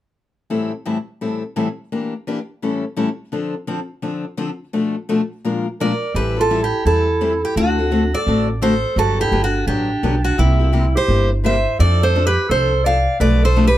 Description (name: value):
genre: acoustic string swing (jazz manouche)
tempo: 170 BPM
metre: 4/4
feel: swing 62% on 8ths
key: A minor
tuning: A4 = 440 Hz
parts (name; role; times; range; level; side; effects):
- picked steel-string acoustic guitar; accompaniment; 0.5-13.7 s; A2 to Bb4; -21 LUFS; left 3 dB; none
- picked steel-string acoustic guitar; melody; 5.8-13.8 s; E4 to F5; -19 LUFS; right 1 dB; plate reverb
- clear clarinet; second line; 5.8-13.8 s; C4 to D5; -24 LUFS; right 3 dB; none
- upright bass; bass; 6.1-13.8 s; G1 to F2; -18 LUFS; equal; none
room: light reverb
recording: close, detailed microphones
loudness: -16 LUFS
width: side -13 dB against mid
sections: 0.5-6.1 A section; 6.1-13.8 B section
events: none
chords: 0.5 Am7; 1.9 Em7b5; 2.6 A7; 3.3 Dm7; 4.7 Bm7b5; 5.4 Bb7; 6.1 Am7; 7.6 D7; 9.0 Gmaj7; 10.4 C7; 11.8 F6; 13.2 Bm7b5